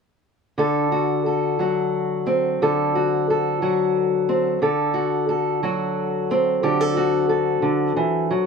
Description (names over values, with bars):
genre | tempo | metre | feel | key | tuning
acoustic country blues, solo or duo | 60 BPM (dotted quarters) | 12/8 | straight | unclear | A4 = 439 Hz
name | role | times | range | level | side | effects
fingerpicked steel-string acoustic guitar | solo | 0.6-8.5 s | D3 to A4 | -19 LUFS | equal | none
room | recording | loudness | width
light reverb | none | -19 LUFS | side -5 dB against mid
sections
0.6-8.5 A section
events
none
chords
0.6 D7